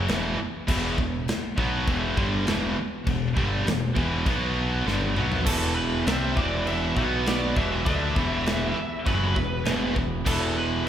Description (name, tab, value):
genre	heavy metal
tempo	100 BPM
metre	4/4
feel	straight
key	E minor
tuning	A4 = 440 Hz
part	distorted electric guitar	riff	0.0-10.9 s	E2 to D4	-31 LUFS	equal	overdrive
part	high-gain distorted guitar	riff	0.0-10.9 s	E2 to D4	-28 LUFS	right 1 dB	distortion
part	growling picked electric bass	bass	0.0-10.8 s	E1 to D2	-30 LUFS	equal	overdrive
part	modern studio drum kit	drums	0.1-10.4 s	china cymbal, crash cymbal, kick drum, snare drum, toms	-29 LUFS	equal	none
part	nasal lead guitar with a parked wah	melody	5.5-10.9 s	A4 to F#5	-30 LUFS	equal	overdrive
part	pipe organ, foundations	sustained chords	5.5-10.9 s	B2 to B4	-37 LUFS	right 1 dB	none
room	moderate church reverb, RT60 3.5 s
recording	band playing live in one room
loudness	-22 LUFS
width	side -10 dB against mid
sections	0.0-5.5 A section; 5.5-10.9 B section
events	drum fill 4.9-5.5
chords	0.0 Em; 4.3 B5; 4.9 Gmaj7; 5.5 Em; 7.0 B5; 7.6 Em